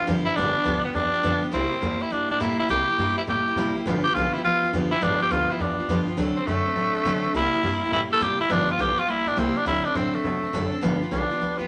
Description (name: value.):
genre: rockabilly.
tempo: 207 BPM.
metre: 4/4.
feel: swing 64% on 8ths.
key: G mixolydian.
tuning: A4 = 440 Hz.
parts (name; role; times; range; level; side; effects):
raspy tenor saxophone; melody; 0.0-11.7 s; A3 to A4; -26 LUFS; equal; none.
picked steel-string acoustic guitar; accompaniment; 0.0-11.7 s; G2 to A4; -28 LUFS; equal; none.
upright bass; bass; 0.0-11.7 s; F#1 to B2; -34 LUFS; equal; none.
room: moderate large studio reverb, RT60 1.0 s.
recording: none.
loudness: -24 LUFS.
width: mono.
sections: 0.0-10.8 A section.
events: none.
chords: 0.0 G7; 1.5 C7; 3.9 G7; 6.2 D7; 7.3 C7; 8.5 G7; 9.1 C7; 9.7 D7; 10.8 G7.